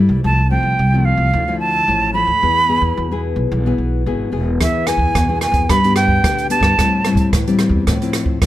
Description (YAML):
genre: samba and choro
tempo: 110 BPM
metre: 4/4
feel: straight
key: unclear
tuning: A4 = 439 Hz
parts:
  - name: nylon-string guitar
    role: accompaniment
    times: 0.0-8.5 s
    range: G2 to G#4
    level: -19 LUFS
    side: left 4 dB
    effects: none
  - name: upright bass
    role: bass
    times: 0.0-8.5 s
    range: E1 to A2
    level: -19 LUFS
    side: right 1 dB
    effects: none
  - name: jazz flute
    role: melody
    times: 0.2-7.3 s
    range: E5 to B5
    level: -16 LUFS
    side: right 2 dB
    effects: none
  - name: open jazz drum kit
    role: drums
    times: 4.6-8.5 s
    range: hi-hat, kick drum, rim click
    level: -19 LUFS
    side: right 1 dB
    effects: none
room: light reverb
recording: close, detailed microphones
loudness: -14 LUFS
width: side -14 dB against mid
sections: 0.0-8.5 A section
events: none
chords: 0.2 F/C; 1.3 Dmadd9; 2.4 E; 5.7 G; 6.8 Am7; 7.9 Fmaj7/A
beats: | 0.25 0.79 1.34 1.88 | 2.43 2.97 3.52 4.06 | 4.61 5.15 5.70 6.24 | 6.79 7.33 7.87 8.42